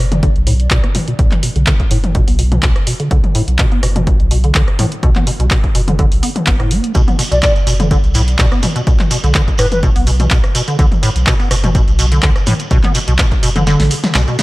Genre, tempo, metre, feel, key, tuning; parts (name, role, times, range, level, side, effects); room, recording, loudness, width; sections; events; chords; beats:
acid house; 125 BPM; 4/4; swing 54% on 16ths; B minor; A4 = 440 Hz
acid bass, square; riff; 0.0-14.4 s; A2 to B3; -18 LUFS; equal; analog chorus, cassette tape, tape echo
warm sub bass; bass; 0.0-14.3 s; F#1 to B1; -16 LUFS; equal; tube saturation, sidechain pumping
punchy analog drum machine; drums; 0.1-14.4 s; handclaps, hi-hat, rim click, snare drum, toms; -19 LUFS; equal
electronic kick drum; drums; 0.2-13.4 s; -14 LUFS; equal
shekere; percussion; 6.9-14.4 s; -25 LUFS; right 3 dB
hollow concert flute; melody; 7.3-9.8 s; B4 to D5; -22 LUFS; equal; analog delay
little or no reverb; -11 LUFS; side -20 dB against mid
0.0-14.4 A section
filter sweep on acid bass 0.0-14.4; kick drops out 13.7-14.4; drum fill 13.7-14.4
0.0 B5
0.23 0.71 | 1.19 1.67 2.15 2.63 | 3.11 3.59 4.07 4.55 | 5.03 5.51 5.99 6.47 | 6.95 7.43 7.91 8.39 | 8.87 9.35 9.83 10.31 | 10.79 11.27 11.75 12.23 | 12.71 13.19 13.67 14.15